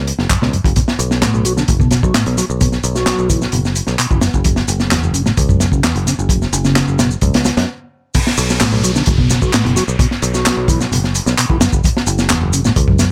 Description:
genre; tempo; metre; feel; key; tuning
breakbeat, breaks; 130 BPM; 4/4; straight; unclear; A4 = 438 Hz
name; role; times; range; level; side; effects
picked electric bass; bass; 0.0-13.0 s; F#1 to F#2; -21 LUFS; equal; none
crunchy breakbeat drum kit; drums; 0.1-13.1 s; crash cymbal, hi-hat, kick drum, snare drum; -18 LUFS; equal; none
percussive tonewheel organ; riff; 0.3-13.1 s; E2 to F#3; -20 LUFS; equal; slow rotary speaker, low-pass filter
electronic handclaps and shaker; drums; 0.3-13.1 s; none; -23 LUFS; equal; none
downlifter; sound effects; 8.1-11.8 s; none; -29 LUFS; equal; none
room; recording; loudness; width
light reverb; none; -15 LUFS; mono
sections
0.0-8.1 A section; 8.1-13.1 B section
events
stop 7.7-8.1; drop 8.1-13.1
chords
0.0 F#5; 0.8 B7(no3); 4.2 F#7(no3); 8.1 B7(no3); 11.6 F#7(no3)

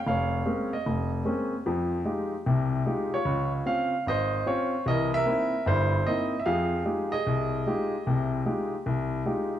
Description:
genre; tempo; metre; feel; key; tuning
solo jazz; 150 BPM; 4/4; swing 66% on 8ths; F minor; A4 = 440 Hz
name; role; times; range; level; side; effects
warm baby grand piano; solo; 0.1-9.5 s; F1 to F5; -25 LUFS; equal; none
room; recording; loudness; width
wet large studio reverb, RT60 1.3 s; none; -25 LUFS; side -11 dB against mid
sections
0.0-9.6 A section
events
none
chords
0.0 Bbm9; 1.7 Fm9; 3.3 Dbmaj7; 4.9 C7#9; 6.5 Fm9

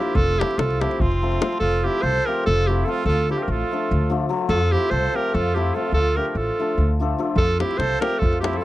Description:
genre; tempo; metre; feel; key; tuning
balkan folk, Balkan wedding band; 292 BPM (eighths); 7/8; straight; F major; A4 = 440 Hz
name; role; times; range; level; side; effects
bright clarinet; melody; 0.0-8.6 s; F4 to C5; -23 LUFS; right 1 dB; none
clear trumpet; second line; 0.0-8.6 s; C4 to A4; -29 LUFS; right 6 dB; none
hammered dulcimer; accompaniment; 0.0-8.6 s; F3 to A4; -27 LUFS; left 4 dB; none
upright bass; bass; 0.1-8.6 s; F1 to F2; -22 LUFS; equal; none
davul; percussion; 0.2-1.6, 7.4-8.6 s; none; -23 LUFS; left 1 dB; none
room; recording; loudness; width
studio reverb; dry, close 1970s-style studio recording; -19 LUFS; side -16 dB against mid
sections
0.0-1.6 A section; 1.6-8.6 B section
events
none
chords
0.2 F; 3.1 Dm; 4.5 F; 5.9 Dm; 7.4 F

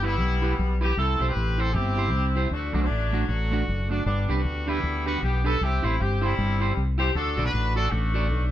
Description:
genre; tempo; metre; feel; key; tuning
ska; 155 BPM; 4/4; swing 60% on 8ths; unclear; A4 = 440 Hz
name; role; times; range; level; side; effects
clear horn section; melody; 0.0-8.5 s; F#3 to B4; -28 LUFS; left 1 dB; none
clean electric guitar; accompaniment; 0.0-8.3 s; A3 to D5; -31 LUFS; right 4 dB; none
fingered electric bass; bass; 0.0-8.5 s; F#1 to D2; -25 LUFS; equal; none
room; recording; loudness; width
moderate studio reverb, RT60 0.7 s; band playing live in one room; -22 LUFS; side -12 dB against mid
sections
0.0-8.5 A section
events
none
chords
0.0 Em; 1.0 C; 2.5 D; 4.1 G; 5.6 C; 7.2 D

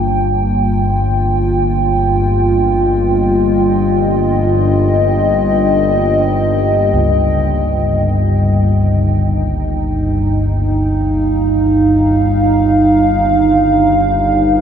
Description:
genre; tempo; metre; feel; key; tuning
dark ambient drone; free time; none; none; unclear; A4 = 440 Hz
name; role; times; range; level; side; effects
dark analog pad; sustained chords; 0.0-14.6 s; G2 to G5; -13 LUFS; right 1 dB; chorus
analog drone; drone; 0.0-14.6 s; G1 to G2; -16 LUFS; left 1 dB; chorus
bronze singing bowl; texture; 0.0-14.6 s; F4; -28 LUFS; left 4 dB; none
gamelan-type bossed gongs; arpeggios; 6.9-14.4 s; C#2; -22 LUFS; left 1 dB; ping-pong delay
room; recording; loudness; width
wet huge ambient reverb, RT60 8.6 s; none; -11 LUFS; side -8 dB against mid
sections
0.0-14.6 A section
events
filter sweep on synth drone 0.0-14.6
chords
0.0 Ebadd9/G

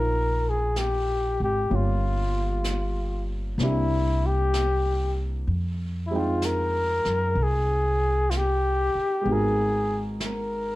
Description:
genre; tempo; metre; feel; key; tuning
jazz ballad; 64 BPM; 4/4; swing 68% on 8ths; unclear; A4 = 440 Hz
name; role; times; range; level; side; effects
mellow flugelhorn; melody; 0.0-10.8 s; E4 to Bb4; -26 LUFS; left 1 dB; none
warm baby grand piano; accompaniment; 0.0-10.8 s; G3 to G5; -32 LUFS; right 1 dB; none
upright bass; bass; 0.0-10.8 s; G1 to Gb2; -26 LUFS; equal; none
jazz brush drum kit; drums; 0.8-10.8 s; brushed snare drum, hi-hat, snare drum; -39 LUFS; right 2 dB; none
room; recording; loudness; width
light reverb; dark, warm production; -23 LUFS; side -17 dB against mid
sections
0.0-10.8 A section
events
none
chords
0.0 Ebmaj9; 1.7 Gm7b5; 3.6 C7; 5.5 Fm7; 9.3 Abm9

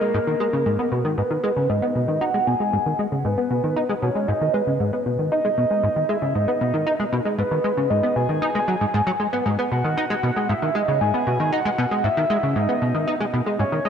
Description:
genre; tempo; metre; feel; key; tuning
ambient; 116 BPM; 4/4; straight; G# minor; A4 = 441 Hz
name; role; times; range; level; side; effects
soft octave-layered synth lead; melody; 0.0-13.9 s; A#4 to G#5; -23 LUFS; right 1 dB; chorus, phaser, vintage 12-bit sampler grit, tape echo
plucky analog bass; riff; 0.0-13.9 s; G#2 to D#4; -22 LUFS; equal; ensemble chorus, tape echo
room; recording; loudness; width
wet lush hall reverb, RT60 2.4 s; none; -19 LUFS; side -7 dB against mid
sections
0.0-1.2 A section; 1.2-13.9 A section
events
none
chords
0.0 G#madd9; 1.2 G#m

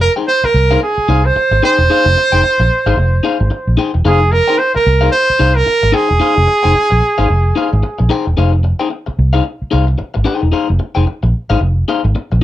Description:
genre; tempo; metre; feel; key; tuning
funk; 111 BPM; 4/4; swing 60% on 16ths; F minor; A4 = 440 Hz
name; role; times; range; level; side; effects
warm trumpet; melody; 0.0-8.1 s; Ab4 to C5; -13 LUFS; right 2 dB; none
electric guitar at the edge of break-up; accompaniment; 0.0-12.4 s; Eb4 to G5; -18 LUFS; left 6 dB; none
vintage muted fingered electric bass; bass; 0.0-12.4 s; E1 to C2; -13 LUFS; equal; none
room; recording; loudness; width
light reverb; none; -11 LUFS; side -14 dB against mid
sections
0.0-12.4 A section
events
none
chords
0.0 Fm7

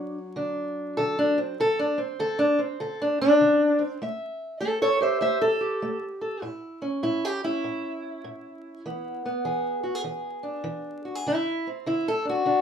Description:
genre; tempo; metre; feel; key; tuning
acoustic country blues, solo or duo; 99 BPM; 4/4; swing 64% on 8ths; unclear; A4 = 440 Hz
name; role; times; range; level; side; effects
fingerpicked steel-string acoustic guitar; solo; 0.0-12.6 s; A2 to E5; -24 LUFS; equal; none
room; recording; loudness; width
moderate studio reverb, RT60 0.6 s; minimal, uncompressed stereo recording, vinyl crackle; -24 LUFS; side -8 dB against mid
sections
0.0-12.6 A section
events
steel-string acoustic guitar solo 0.0-12.6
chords
0.0 D7; 4.0 A7; 8.9 E7; 11.3 D7

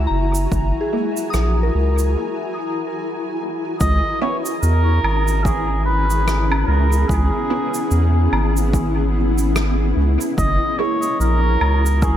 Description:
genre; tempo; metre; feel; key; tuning
ambient dub; 73 BPM; 4/4; swing 57% on 16ths; C# dorian; A4 = 440 Hz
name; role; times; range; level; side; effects
granular cloud pad; sustained chords; 0.0-12.2 s; B3 to A#5; -24 LUFS; left 2 dB; built-in reverb
soft synth bell; arpeggios; 0.0-3.8 s; G#4 to D#6; -28 LUFS; left 1 dB; chorus, dub echo
round analog bass; bass; 0.0-12.2 s; F#1 to E2; -17 LUFS; equal; none
bubbling stepped-filter texture; texture; 0.0-2.2 s; E4 to E5; -36 LUFS; left 1 dB; none
cabasa, rim click and woodblock; drums; 0.3-12.2 s; none; -28 LUFS; right 1 dB; dub echo
electronic kick drum; drums; 0.5-12.2 s; none; -22 LUFS; equal; overdrive
filtered dub chord stab; stabs; 0.9-11.1 s; G#3 to E4; -28 LUFS; right 4 dB; phaser, wide subtle chorus, dub echo
trumpet with cup mute; melody; 3.8-12.2 s; G#4 to D#5; -23 LUFS; right 1 dB; vintage 12-bit sampler grit, dub echo
room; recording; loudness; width
light reverb, studio ambience; none; -16 LUFS; side -11 dB against mid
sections
0.0-3.8 A section; 3.8-12.2 B section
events
break 2.2-3.8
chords
0.0 F#9; 3.8 C#m7; 10.4 F#9

